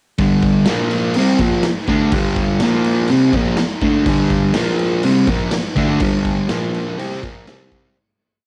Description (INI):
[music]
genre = garage rock duo or trio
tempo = 123 BPM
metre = 4/4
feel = straight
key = unclear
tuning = A4 = 441 Hz
[part]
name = fuzz guitar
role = riff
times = 0.2-8.0 s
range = G2 to D4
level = -17 LUFS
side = equal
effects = distortion, cassette tape
[part]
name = raw garage drum kit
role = drums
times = 0.2-7.8 s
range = crash cymbal, kick drum, snare drum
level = -24 LUFS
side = equal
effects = none
[sound]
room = small room reverb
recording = home recording on cassette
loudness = -17 LUFS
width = mono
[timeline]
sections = 0.2-8.0 riff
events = fade-out 6.0-8.0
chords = 0.2 G5; 0.7 Bb5; 1.2 G5; 2.6 Bb5; 3.1 G5; 4.6 Bb5; 5.0 G5; 6.5 Bb5; 7.0 Bbsus2; 7.5 C5